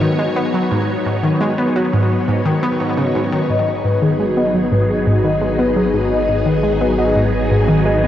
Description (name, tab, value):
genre	ambient, sequencer-driven space music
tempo	86 BPM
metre	4/4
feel	straight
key	G# minor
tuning	A4 = 440 Hz
part	phased string machine	sustained chords	0.0-8.1 s	F#3 to C#5	-19 LUFS	equal	ensemble chorus, phaser, shimmer reverb
part	analog pluck	riff	0.0-8.1 s	G#2 to B3	-17 LUFS	equal	chorus, ping-pong delay
part	vibraphone with soft mallets	arpeggios	3.5-8.0 s	F#4 to D#5	-19 LUFS	left 2 dB	auto-pan, low-pass filter, ping-pong delay, shimmer reverb
part	round analog bass	bass	3.5-8.1 s	G#1	-25 LUFS	equal	none
room	wet huge ambient reverb, RT60 7.7 s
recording	worn, warbling old tape, cassette tape, warbly pitch drift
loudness	-14 LUFS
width	side -11 dB against mid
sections	0.0-3.5 A section; 3.5-8.1 B section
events	filter sweep on vibraphone 3.5-8.1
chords	0.0 G#m7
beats	0.01 | 0.71 1.41 2.10 2.80 | 3.50 4.20 4.89 5.59 | 6.29 6.99 7.69